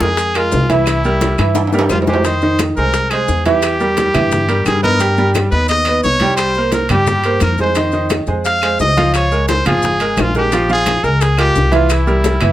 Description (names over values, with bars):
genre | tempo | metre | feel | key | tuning
latin, salsa | 174 BPM | 4/4 | straight | F minor | A4 = 440 Hz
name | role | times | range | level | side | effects
bright trumpet | melody | 0.0-12.5 s | E4 to F5 | -17 LUFS | equal | none
bright concert grand piano | accompaniment | 0.0-12.5 s | Eb3 to G5 | -17 LUFS | right 2 dB | none
upright bass | bass | 0.0-12.5 s | Ab1 to G2 | -18 LUFS | left 1 dB | none
congas | percussion | 0.0-12.5 s | none | -23 LUFS | equal | none
maracas | percussion | 0.0-12.5 s | none | -32 LUFS | left 6 dB | none
bongos | percussion | 0.2-12.4 s | none | -24 LUFS | left 6 dB | none
timbales | percussion | 0.2-12.5 s | none | -23 LUFS | right 3 dB | none
claves | percussion | 0.3-12.5 s | none | -29 LUFS | left 7 dB | none
room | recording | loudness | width
moderate studio ambience, RT60 0.5 s | none | -12 LUFS | side -13 dB against mid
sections
0.0-2.2 A section; 2.2-12.5 A section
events
drum fill 0.9-2.2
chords
0.0 Bb5; 0.9 C7b13; 2.2 Fm7; 3.6 Gm6; 5.0 Gaug; 6.4 C5; 7.8 Fm7; 9.1 Db6; 10.5 Bbm7; 11.9 C7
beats
0.18 0.53 | 0.87 1.21 1.56 1.90 | 2.25 2.59 2.94 3.28 | 3.63 3.97 4.32 4.66 | 5.00 5.35 5.70 6.04 | 6.38 6.73 7.07 7.42 | 7.76 8.11 8.45 8.80 | 9.14 9.49 9.83 10.18 | 10.52 10.87 11.21 11.56 | 11.90 12.25